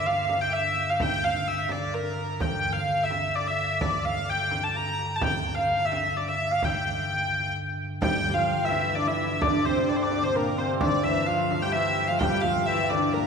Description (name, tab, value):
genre	medieval dance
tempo	128 BPM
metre	3/4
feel	straight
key	G dorian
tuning	A4 = 440 Hz
part	rich hurdy-gurdy	melody	0.0-13.3 s	Bb4 to Bb5	-25 LUFS	equal	none
part	pipe organ, stopped flute	drone	0.0-13.3 s	G2 to D3	-33 LUFS	right 1 dB	none
part	frame drum	percussion	0.1-13.1 s	none	-33 LUFS	right 2 dB	none
part	hammered dulcimer	second line	8.0-13.3 s	Bb3 to G4	-29 LUFS	right 3 dB	none
part	rich viola da gamba	second line	8.0-13.3 s	Bb2 to G3	-30 LUFS	left 5 dB	none
room	wet church reverb, RT60 3.0 s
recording	recorded in a church or concert hall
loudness	-23 LUFS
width	side -6 dB against mid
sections	0.0-8.0 A section; 8.0-13.3 A section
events	none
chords	none